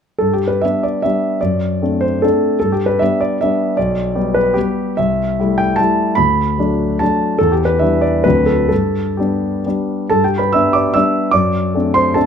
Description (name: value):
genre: classical, romantic triple-time dance for piano with dotted rhythms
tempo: 122-166 BPM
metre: 3/4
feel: rubato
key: G major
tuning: A4 = 438 Hz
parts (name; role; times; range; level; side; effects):
- warm concert grand piano; solo; 0.2-12.3 s; B1 to E6; -13 LUFS; equal; none
room: light reverb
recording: none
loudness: -13 LUFS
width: side -7 dB against mid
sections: 0.2-10.1 A section; 10.1-12.3 A section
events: none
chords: 0.2 G; 1.4 D7/F#; 2.6 G; 3.8 G/B; 5.0 Am7/C; 6.2 D; 7.4 Em7; 8.3 D7; 8.7 G; 11.3 D7/F#